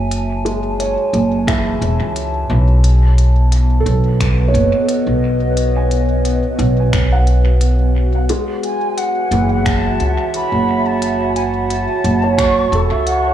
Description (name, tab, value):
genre	ambient dub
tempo	88 BPM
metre	4/4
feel	swing 54% on 16ths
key	F# dorian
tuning	A4 = 440 Hz
part	warbly tape-like pad	sustained chords	0.0-13.3 s	B3 to A5	-21 LUFS	equal	chorus, built-in reverb
part	felt-muted upright piano	arpeggios	0.0-13.3 s	E3 to G#5	-22 LUFS	right 2 dB	tape echo
part	upright bass	bass	0.0-13.3 s	E1 to C#2	-15 LUFS	equal	none
part	organic electronic drum kit	drums	0.1-13.2 s	finger snaps, hi-hat	-28 LUFS	left 1 dB	dub echo
part	electronic kick drum	drums	1.5-12.5 s	none	-19 LUFS	equal	none
part	mellow concert flute	melody	8.6-13.3 s	F#5 to C#6	-20 LUFS	equal	dub echo
room	light reverb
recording	small room reverb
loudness	-13 LUFS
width	side -11 dB against mid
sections	0.0-13.3 A section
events	none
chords	0.0 F#m7; 2.8 B7; 8.3 F#m7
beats	| 0.11 0.79 1.48 2.16 | 2.84 3.52 4.20 4.88 | 5.57 6.25 6.93 7.61 | 8.29 8.98 9.66 10.34 | 11.02 11.70 12.38 13.07